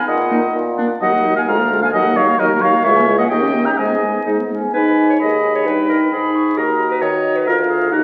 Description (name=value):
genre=quick classical-period movement for wind quintet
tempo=130 BPM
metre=2/4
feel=rubato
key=G# minor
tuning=A4 = 444 Hz
part: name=bright silver concert flute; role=melody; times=0.0-8.0 s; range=Eb5 to D#6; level=-25 LUFS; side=equal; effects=none
part: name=warm oboe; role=second line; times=0.0-8.0 s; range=Bb4 to B5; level=-21 LUFS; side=equal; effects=none
part: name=mellow bassoon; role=bass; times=0.1-8.0 s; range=C#2 to D#3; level=-23 LUFS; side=equal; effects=none
part: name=clear clarinet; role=accompaniment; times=0.3-8.0 s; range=C#4 to D#5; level=-25 LUFS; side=equal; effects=none
part: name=dark French horn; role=accompaniment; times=0.3-8.0 s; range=Gb3 to G#4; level=-22 LUFS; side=equal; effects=none
room=wet recital hall reverb, RT60 1.6 s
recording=very old 78 rpm record, vinyl crackle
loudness=-16 LUFS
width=mono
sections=0.0-4.7 A section; 4.7-8.0 B section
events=none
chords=0.1 Ebm/Bb; 0.6 Bb; 1.0 Ebm; 1.5 Bb7/D; 1.9 Ebm; 2.8 A#m7b5/C#; 3.3 D#7; 3.8 G#m; 5.7 D#/G; 6.1 G#m; 6.6 D#m; 7.5 A#7/D